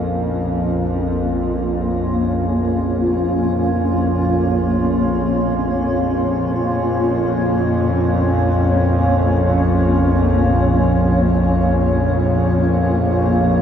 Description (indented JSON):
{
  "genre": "dark ambient drone",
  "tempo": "free time",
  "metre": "none",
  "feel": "none",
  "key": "Bb minor",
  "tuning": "A4 = 442 Hz",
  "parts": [
    { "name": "granular cloud pad", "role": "sustained chords", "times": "0.0-13.6 s", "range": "Bb3 to Db5", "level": "-18 LUFS", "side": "equal", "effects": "built-in reverb, shimmer reverb" },
    { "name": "bowed-like drone", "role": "drone", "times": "0.0-13.6 s", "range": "Bb1 to F2", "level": "-18 LUFS", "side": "equal", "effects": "built-in reverb" },
    { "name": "quartz singing bowl", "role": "texture", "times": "0.0-13.6 s", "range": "Bb4", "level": "-37 LUFS", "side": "right 3 dB", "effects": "none" }
  ],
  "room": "moderate huge ambient reverb, RT60 8.8 s",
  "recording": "none",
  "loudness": "-15 LUFS",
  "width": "side -8 dB against mid",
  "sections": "0.0-13.6 A section",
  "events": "none",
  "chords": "0.0 Bbm"
}